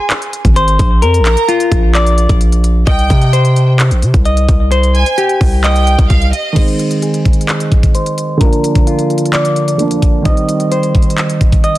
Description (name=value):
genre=hip hop, trap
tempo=130 BPM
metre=4/4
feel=half-time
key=C minor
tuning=A4 = 436 Hz
part: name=semi-hollow electric guitar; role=arpeggios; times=0.0-11.8 s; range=F4 to Eb5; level=-17 LUFS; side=left 2 dB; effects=low-pass filter, digital delay
part: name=trap drum kit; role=drums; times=0.1-11.8 s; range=crash cymbal, handclaps, hi-hat, kick drum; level=-13 LUFS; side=equal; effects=vintage 12-bit sampler grit
part: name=hard-hitting 808-style bass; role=bass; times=0.4-6.3 s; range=Ab1 to C3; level=-11 LUFS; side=equal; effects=none
part: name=rich studio violin section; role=second line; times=1.3-6.6 s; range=Eb5 to Bb5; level=-19 LUFS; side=right 4 dB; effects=digital delay
part: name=dark grand piano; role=accompaniment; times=6.5-11.8 s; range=D3 to Eb4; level=-15 LUFS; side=right 2 dB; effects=low-pass filter
room=digital ambience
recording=dense, heavily limited modern master, vinyl crackle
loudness=-9 LUFS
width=side -16 dB against mid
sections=0.0-6.6 A section; 6.6-11.8 B section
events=filter sweep 6.6-11.8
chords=0.0 Ab; 1.0 Bb; 2.9 Cm; 6.6 Ab; 8.4 Bb; 10.3 Cm